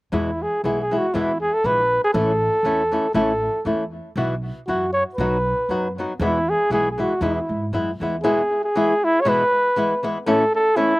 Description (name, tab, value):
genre	mexican folk, mariachi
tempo	119 BPM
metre	2/4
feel	swing 55% on 8ths, rubato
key	E major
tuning	A4 = 440 Hz
part	flamenco guitar	accompaniment	0.1-10.9 s	E2 to F#4	-23 LUFS	left 1 dB	slapback echo
part	upright bass	bass	0.1-8.2 s	A1 to G#2	-28 LUFS	right 1 dB	none
part	warm flugelhorn	melody	0.2-11.0 s	E4 to C#5	-19 LUFS	equal	slapback echo
room	light reverb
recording	recorded outdoors, with no room sound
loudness	-18 LUFS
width	side -20 dB against mid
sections	0.1-8.2 A section; 8.2-11.0 A section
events	none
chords	0.1 E; 2.1 A; 4.2 Bsus4; 5.2 B; 6.2 E; 10.3 A